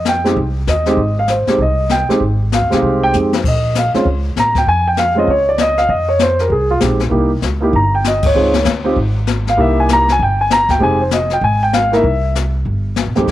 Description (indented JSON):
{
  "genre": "jazz piano trio",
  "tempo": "196 BPM",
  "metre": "4/4",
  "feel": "swing 63% on 8ths",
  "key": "F minor",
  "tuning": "A4 = 441 Hz",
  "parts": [
    { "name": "dark baby grand piano", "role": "melody", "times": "0.0-13.3 s", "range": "F2 to Bb5", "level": "-14 LUFS", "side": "equal", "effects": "none" },
    { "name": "upright bass", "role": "bass", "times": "0.0-13.3 s", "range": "F1 to F2", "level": "-18 LUFS", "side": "equal", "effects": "none" },
    { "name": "jazz brush drum kit", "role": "drums", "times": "0.1-13.3 s", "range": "brushed snare drum, crash cymbal, hi-hat, kick drum, ride cymbal, snare drum", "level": "-20 LUFS", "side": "left 5 dB", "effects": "none" }
  ],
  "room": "moderate spring reverb, RT60 1.2 s, small room reverb",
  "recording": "1960s-style stereo",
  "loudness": "-12 LUFS",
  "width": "side -14 dB against mid",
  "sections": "0.0-13.3 A section",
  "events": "drum fill 3.1-3.4; band accent 8.2",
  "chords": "0.0 Fm9; 3.4 Bbm; 5.9 Fm7; 7.1 C7#9; 8.4 Dbmaj7; 9.6 C7#9; 10.8 Fm9; 12.0 C"
}